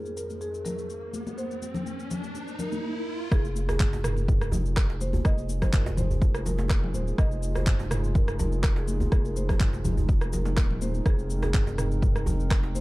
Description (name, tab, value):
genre	afro house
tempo	124 BPM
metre	4/4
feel	swing 53% on 16ths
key	F minor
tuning	A4 = 440 Hz
part	marimba with medium mallets	melody	0.0-12.8 s	Ab4 to Eb5	-37 LUFS	equal	digital delay
part	dark analog pad	sustained chords	0.0-12.8 s	F2 to C5	-38 LUFS	right 2 dB	chorus, sidechain pumping
part	riser	sound effects	0.7-3.3 s	none	-37 LUFS	right 2 dB	none
part	deep house drum kit	drums	0.1-12.8 s	cabasa, handclaps, rim click, toms	-33 LUFS	right 1 dB	overdrive
part	congas	percussion	0.3-12.8 s	none	-36 LUFS	left 2 dB	none
part	round analog bass	bass	3.3-12.8 s	Eb1 to F1	-29 LUFS	equal	sidechain pumping
part	electronic kick drum	drums	3.3-12.6 s	none	-23 LUFS	equal	overdrive
part	djembe	percussion	3.7-12.7 s	none	-33 LUFS	right 1 dB	none
room	little or no reverb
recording	dark, warm production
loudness	-24 LUFS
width	side -19 dB against mid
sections	0.0-3.3 A section; 3.3-12.8 B section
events	riser 0.7-3.3; drop 3.3-12.8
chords	0.0 Abadd9/F; 3.3 Fm7; 11.1 Abadd9